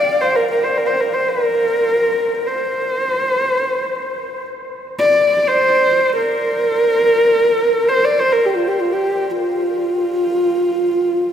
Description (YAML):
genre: mongolian traditional, Mongolian folk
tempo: free time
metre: none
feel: none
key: F zhi mode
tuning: A4 = 441 Hz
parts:
  - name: dark horsehead fiddle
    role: solo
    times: 0.0-11.3 s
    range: F4 to D5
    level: -14 LUFS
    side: equal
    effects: none
room: wet cathedral reverb, RT60 6.7 s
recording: recorded in a church or concert hall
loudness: -14 LUFS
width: side -9 dB against mid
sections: 0.0-11.3 A section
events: slowing down 9.6-11.3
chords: none